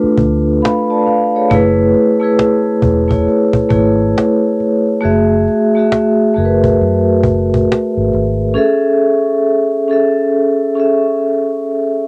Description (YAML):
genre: lo-fi hip hop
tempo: 68 BPM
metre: 4/4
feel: swing 62% on 16ths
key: F# minor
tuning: A4 = 440 Hz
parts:
  - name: vibraphone with soft mallets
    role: accompaniment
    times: 0.0-12.1 s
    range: A3 to B5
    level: -14 LUFS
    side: equal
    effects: cassette tape, low-pass filter
  - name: vintage muted fingered electric bass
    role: bass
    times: 0.0-8.6 s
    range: E1 to F#2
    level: -19 LUFS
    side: equal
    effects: none
  - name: cajon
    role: drums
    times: 0.2-8.3 s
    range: none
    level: -21 LUFS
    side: equal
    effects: vintage 12-bit sampler grit, cassette tape
room: moderate booth ambience, RT60 0.2 s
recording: home recording on cassette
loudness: -13 LUFS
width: mono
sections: 0.0-8.6 A section; 8.6-12.1 B section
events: none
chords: 0.0 C#7b9b13 (rootless); 1.5 F#m11 (rootless); 5.0 F#m9; 8.6 Amaj7